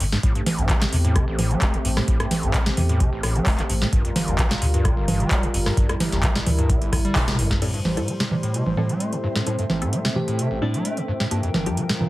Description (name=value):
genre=acid house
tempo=130 BPM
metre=4/4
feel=straight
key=A phrygian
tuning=A4 = 440 Hz
part: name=overdriven acid bass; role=riff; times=0.0-12.0 s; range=G1 to A3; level=-26 LUFS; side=equal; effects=distortion, lush chorus, cassette tape, sidechain pumping
part: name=warm sub bass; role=bass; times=0.0-7.5 s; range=D1 to E2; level=-24 LUFS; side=equal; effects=sidechain pumping
part: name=booming analog drum machine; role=drums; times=0.0-12.1 s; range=congas, crash cymbal, handclaps, hi-hat, rim click, snare drum, toms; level=-24 LUFS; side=right 1 dB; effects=overdrive
part: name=warm analog pad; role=sustained chords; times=0.2-12.1 s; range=G2 to C5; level=-29 LUFS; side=equal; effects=chorus, tremolo, sidechain pumping
part: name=electronic kick drum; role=drums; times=0.2-7.6 s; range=none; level=-22 LUFS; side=equal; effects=overdrive
part: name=filtered dub chord stab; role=stabs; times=7.6-11.9 s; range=F3 to A4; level=-32 LUFS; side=left 1 dB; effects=phaser, analog chorus, dub echo
part: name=granular cloud pad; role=texture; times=8.5-12.1 s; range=C4 to G5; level=-33 LUFS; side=right 2 dB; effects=built-in reverb, sidechain pumping
part: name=bell-like FM electric piano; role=melody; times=10.2-11.1 s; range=D4 to G4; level=-31 LUFS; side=left 2 dB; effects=chorus, tape echo
room=light reverb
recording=heavily compressed radio sound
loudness=-19 LUFS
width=side -18 dB against mid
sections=0.0-7.6 A section; 7.6-12.1 B section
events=drum fill 6.9-7.6; band accent 7.2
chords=0.2 Am7; 3.9 Gm7; 7.6 Am7; 11.3 Gm7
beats=| 0.23 0.70 1.16 1.62 | 2.08 2.54 3.00 3.47 | 3.93 4.39 4.85 5.31 | 5.77 6.24 6.70 7.16 | 7.62 8.08 8.54 9.00 | 9.47 9.93 10.39 10.85 | 11.31 11.77